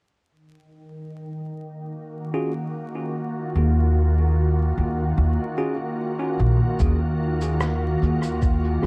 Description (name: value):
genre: ambient dub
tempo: 74 BPM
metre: 4/4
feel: swing 54% on 16ths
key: Eb minor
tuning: A4 = 440 Hz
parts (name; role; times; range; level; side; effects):
- soft additive organ-like pad; sustained chords; 0.9-8.9 s; Eb3 to Gb4; -30 LUFS; equal; ensemble chorus, built-in reverb
- bell-like tine electric piano; stabs; 2.3-8.9 s; Db4 to Ab4; -33 LUFS; equal; low-pass filter, dub echo
- upright bass; bass; 3.6-8.9 s; Bb1 to Eb2; -22 LUFS; equal; tube saturation
- electronic kick drum; drums; 6.8-8.6 s; none; -25 LUFS; equal; none
- electronic shaker and rim click; drums; 6.8-8.6 s; none; -36 LUFS; equal; dub echo
room: light reverb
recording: vinyl crackle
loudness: -23 LUFS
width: mono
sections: 0.3-6.8 A section; 6.8-8.9 B section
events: filter sweep on ambient pad 0.3-6.8; filter sweep on tine electric piano 6.8-8.9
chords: 0.3 Ebmadd9